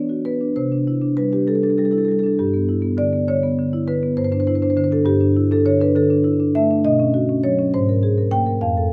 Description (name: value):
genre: classical, contemporary piece for solo marimba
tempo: 67 BPM (dotted quarters)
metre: 6/8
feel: straight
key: unclear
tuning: A4 = 440 Hz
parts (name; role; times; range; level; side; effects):
- marimba with soft mallets; solo; 0.0-8.9 s; F2 to G5; -19 LUFS; equal; none
room: moderate recital hall reverb, RT60 1.6 s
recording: close, detailed microphones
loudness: -19 LUFS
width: mono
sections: 0.0-8.9 A section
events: none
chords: 0.0 Esus2; 0.6 C69; 2.4 G6; 4.2 Em7/G; 6.0 Dsus2; 6.9 Badd9; 7.7 G#add9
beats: | 0.56 1.47 | 2.37 3.28 | 4.18 5.07 | 5.96 6.85 | 7.74 8.63